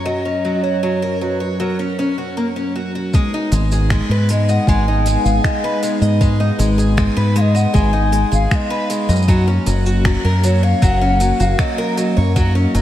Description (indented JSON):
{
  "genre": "folktronica",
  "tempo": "78 BPM",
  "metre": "4/4",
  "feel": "straight",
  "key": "G# minor",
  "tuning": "A4 = 440 Hz",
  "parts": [
    { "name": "mellow hollow wooden flute", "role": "melody", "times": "0.0-12.2 s", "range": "A#4 to G#5", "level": "-22 LUFS", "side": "left 1 dB", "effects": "tape echo" },
    { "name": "warm analog pad", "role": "sustained chords", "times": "0.0-12.8 s", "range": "F#2 to A#5", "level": "-22 LUFS", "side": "equal", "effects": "chorus" },
    { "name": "picked twelve-string acoustic guitar", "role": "arpeggios", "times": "0.0-12.8 s", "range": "F#3 to D#5", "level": "-22 LUFS", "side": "equal", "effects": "tape echo" },
    { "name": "organic electronic drum kit", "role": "drums", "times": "0.0-12.8 s", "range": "finger snaps, hi-hat, shaker", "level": "-28 LUFS", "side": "equal", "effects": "low-pass filter on perc, small room ambience, low-pass filter on hats, low-pass filter on snare" },
    { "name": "electronic kick drum", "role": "drums", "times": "3.1-12.5 s", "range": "none", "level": "-16 LUFS", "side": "equal", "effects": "small room ambience" },
    { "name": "deep dub fingered electric bass", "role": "bass", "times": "3.5-12.8 s", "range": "F#1 to G#2", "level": "-15 LUFS", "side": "equal", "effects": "none" }
  ],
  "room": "moderate lush hall reverb, RT60 2.8 s",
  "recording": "dreamy mix soaked in reverb, vinyl crackle",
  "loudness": "-14 LUFS",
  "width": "side -12 dB against mid",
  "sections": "0.0-3.1 A section; 3.1-12.8 B section",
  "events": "none",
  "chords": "0.0 F#; 3.1 G#m; 9.3 F#"
}